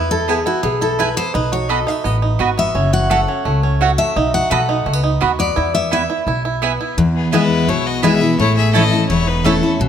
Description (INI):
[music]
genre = bluegrass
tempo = 170 BPM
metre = 4/4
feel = straight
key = E major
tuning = A4 = 439 Hz
[part]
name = bluegrass banjo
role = melody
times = 0.0-9.5 s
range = A3 to A4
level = -22 LUFS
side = right 4 dB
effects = none
[part]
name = picked steel-string acoustic guitar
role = accompaniment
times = 0.0-9.9 s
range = E2 to F#5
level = -17 LUFS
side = left 3 dB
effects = none
[part]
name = upright bass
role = bass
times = 0.0-9.9 s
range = E1 to E2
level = -20 LUFS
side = equal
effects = none
[part]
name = mandolin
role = stabs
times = 0.3-9.5 s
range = A3 to B5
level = -22 LUFS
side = right 6 dB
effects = none
[part]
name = clear fiddle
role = melody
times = 7.2-9.7 s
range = G#4 to E5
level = -21 LUFS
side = left 4 dB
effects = none
[part]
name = clear fiddle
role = second line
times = 7.2-9.7 s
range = B3 to A4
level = -26 LUFS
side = left 4 dB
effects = none
[sound]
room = light reverb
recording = close, detailed microphones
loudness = -14 LUFS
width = side -8 dB against mid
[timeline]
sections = 0.0-7.0 A section; 7.0-9.9 B section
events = steel-string acoustic guitar solo 0.0-7.0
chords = 0.0 E; 1.3 B; 2.8 F#m; 4.2 B; 5.6 E; 8.4 A